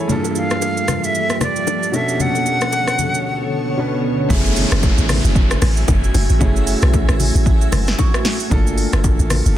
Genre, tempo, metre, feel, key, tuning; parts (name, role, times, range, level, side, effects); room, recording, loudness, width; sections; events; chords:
amapiano; 114 BPM; 4/4; swing 58% on 16ths; F# minor; A4 = 439 Hz
clear concert grand piano; accompaniment; 0.0-9.6 s; G2 to C#6; -23 LUFS; right 1 dB
granular cloud pad; sustained chords; 0.0-9.6 s; D3 to A5; -24 LUFS; equal; built-in reverb
deep house drum kit; drums; 0.1-9.6 s; hi-hat, kick drum, rim click, shaker, snare drum; -19 LUFS; equal; soft clipping on snare
congas and bongos; percussion; 0.1-9.4 s; -26 LUFS; left 6 dB
bright silver concert flute; melody; 0.4-3.8 s; D5 to F#5; -21 LUFS; equal; low-pass filter, digital delay
deep log drum bass; bass; 4.3-9.6 s; F#1 to B1; -17 LUFS; equal
downlifter; sound effects; 4.3-8.5 s; -26 LUFS; equal
light reverb; dense, heavily limited modern master; -14 LUFS; side -12 dB against mid
0.0-4.3 A section; 4.3-9.6 B section
filter sweep 0.0-4.3; break 3.2-4.3; drop 4.3-9.6; grand piano fill 7.7-8.5
0.1 Gm9; 1.9 Bm9; 4.3 F#m9; 8.5 Gm9